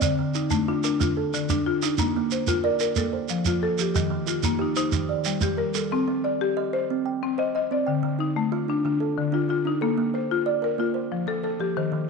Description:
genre	southern african traditional, mbira-style interlocking cycle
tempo	122 BPM (dotted quarters)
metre	12/8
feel	straight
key	C dorian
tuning	A4 = 440 Hz
part	buzzing marimba with medium hard mallets	arpeggios	0.0-12.1 s	D3 to Eb5	-25 LUFS	left 8 dB	none
part	kalimba	arpeggios	0.0-12.1 s	D3 to G5	-27 LUFS	right 10 dB	none
part	shekere	percussion	0.0-5.9 s	none	-28 LUFS	right 5 dB	none
room	wet echo chamber reverb, RT60 1.5 s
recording	1960s-style stereo with parts hard left and right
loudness	-22 LUFS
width	side -4 dB against mid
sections	0.0-5.9 A section; 5.9-12.1 A section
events	none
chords	0.0 Dm; 2.0 Bb; 3.0 F; 4.0 Eb; 4.9 Gm; 5.9 Cm; 7.9 Dm; 9.8 Bb; 10.8 F

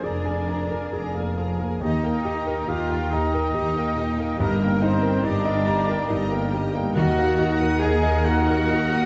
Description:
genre	classical, romantic movement for piano and orchestra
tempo	69 BPM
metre	3/4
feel	rubato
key	Eb major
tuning	A4 = 444 Hz
part	clear grand piano	melody	0.0-9.1 s	Eb2 to Bb5	-28 LUFS	equal	none
part	warm symphonic violin section	melody	0.0-9.1 s	Gb5 to Bb5	-44 LUFS	equal	none
part	mellow clarinet	second line	0.0-9.1 s	Eb5 to Ab5	-40 LUFS	equal	none
part	mellow concert flute	second line	0.0-9.1 s	Bb5	-39 LUFS	equal	none
part	rich symphonic violin section	second line	0.0-9.1 s	Ab4 to Eb6	-41 LUFS	equal	none
part	warm oboe	second line	0.0-9.1 s	Bb4 to Ab5	-36 LUFS	equal	none
part	clear symphonic viola section	accompaniment	0.0-9.1 s	G4 to Bb4	-36 LUFS	equal	none
part	dark trumpet section	stabs	0.0-9.1 s	Bb4 to Ab5	-33 LUFS	equal	none
part	mellow tuba	bass	0.0-9.1 s	F1 to Eb2	-32 LUFS	equal	none
part	rich symphonic cello section	bass	0.0-9.1 s	Bb3 to Ab4	-31 LUFS	equal	none
part	rich symphonic double bass section	bass	0.0-9.1 s	Eb2 to G2	-31 LUFS	equal	none
part	dark French horn section	sustained chords	1.8-9.1 s	Bb3 to G4	-32 LUFS	equal	none
part	timpani	percussion	7.0-8.2 s	Eb3	-31 LUFS	equal	none
room	wet scoring stage reverb, RT60 1.5 s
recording	dark, warm production, nothing above 7.8 kHz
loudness	-23 LUFS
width	mono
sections	0.0-9.1 A section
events	none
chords	0.0 Bb7/F; 1.8 Eb; 4.4 Eb/G; 7.0 Ebm

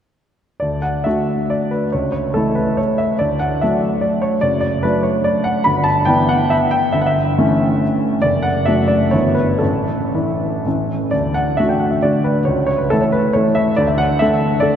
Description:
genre	classical, romantic triple-time dance for piano with dotted rhythms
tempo	110-154 BPM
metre	3/4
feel	rubato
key	D major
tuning	A4 = 436 Hz
part	warm grand piano	solo	0.6-14.8 s	F#1 to B5	-14 LUFS	equal	none
room	wet cathedral reverb, RT60 5.3 s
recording	dark, warm production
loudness	-15 LUFS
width	side -9 dB against mid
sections	0.6-11.1 A section; 11.1-14.8 A section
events	none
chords	0.6 D; 1.9 A/C#; 3.2 D; 4.4 D/F#; 5.7 Em7/G; 6.9 A7/G; 8.2 D/F#; 9.1 Em/G; 9.6 Asus4; 10.7 A; 11.1 D; 12.5 A/C#; 13.8 D5

